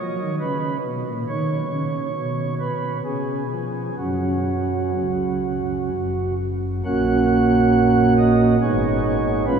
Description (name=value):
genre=classical, chorale-style piece for pipe organ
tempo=61-71 BPM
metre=3/4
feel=rubato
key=F# major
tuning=A4 = 440 Hz
part: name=pipe organ, flutes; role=solo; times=0.0-9.6 s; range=F#1 to F#5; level=-19 LUFS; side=right 2 dB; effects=none
room=wet cathedral reverb, RT60 7.5 s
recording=heard from further back in the room, studio ambience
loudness=-19 LUFS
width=side -7 dB against mid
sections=0.0-6.8 A section; 6.8-9.6 B section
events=none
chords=0.4 A#m; 1.3 C#sus2; 2.1 N.C.; 3.0 C#; 4.0 F#5; 6.8 F#/A#; 8.6 G#m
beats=0.42 | 1.28 2.14 3.03 | 3.98 4.96 5.91 | 6.84 7.73 8.60 | 9.47